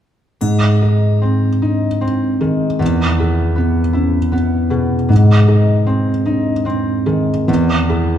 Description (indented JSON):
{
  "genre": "cinematic, emotional film score for orchestra",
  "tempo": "51 BPM (dotted quarters)",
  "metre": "6/8",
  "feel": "uneven beats, rubato",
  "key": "unclear",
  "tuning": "A4 = 443 Hz",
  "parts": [
    { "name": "felt-muted upright piano", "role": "accompaniment", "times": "0.4-8.2 s", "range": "E2 to Ab4", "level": "-14 LUFS", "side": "right 1 dB", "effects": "none" },
    { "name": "concert harp", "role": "arpeggios", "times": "0.4-8.2 s", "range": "E2 to E4", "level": "-19 LUFS", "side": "left 2 dB", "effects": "none" },
    { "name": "triangle", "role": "percussion", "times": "0.4-2.0 s", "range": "none", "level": "-35 LUFS", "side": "left 6 dB", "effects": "none" }
  ],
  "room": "moderate scoring stage reverb, RT60 1.7 s",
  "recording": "dark, warm production",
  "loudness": "-13 LUFS",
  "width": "side -10 dB against mid",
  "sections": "0.4-8.2 A section",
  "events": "none",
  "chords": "0.4 Ab; 2.8 E; 5.1 Ab; 7.5 E",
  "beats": "| 0.41 1.63 | 2.81 3.95 | 5.11 6.27 | 7.48"
}